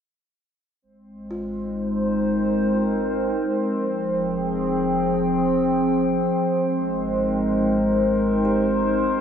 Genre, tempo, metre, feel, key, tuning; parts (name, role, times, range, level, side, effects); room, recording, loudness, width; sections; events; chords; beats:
ambient; 63 BPM; 3/4; straight; Ab major; A4 = 443 Hz
warbly tape-like pad; sustained chords; 1.2-9.2 s; F3 to G5; -21 LUFS; equal; chorus, built-in reverb
round analog bass; bass; 0.8-9.2 s; F1 to Ab1; -37 LUFS; equal
analog drone; drone; 1.5-9.2 s; C4 to C5; -26 LUFS; left 1 dB; chorus, phaser
kalimba; arpeggios; 1.3-3.4, 8.4-9.2 s; F4 to G4; -40 LUFS; equal; tape echo
wet cathedral reverb, RT60 5.3 s; dreamy mix soaked in reverb, cassette tape, nothing above 8.0 kHz; -20 LUFS; side -8 dB against mid
0.8-9.2 A section
fade-in on kalimba 0.8-9.2; fade-in on analog synth bass 0.8-9.2
0.8 Ab; 3.7 Fm9; 6.5 Abmaj7
| 0.83 1.78 2.74 | 3.69 4.64 5.59 | 6.55 7.50 8.45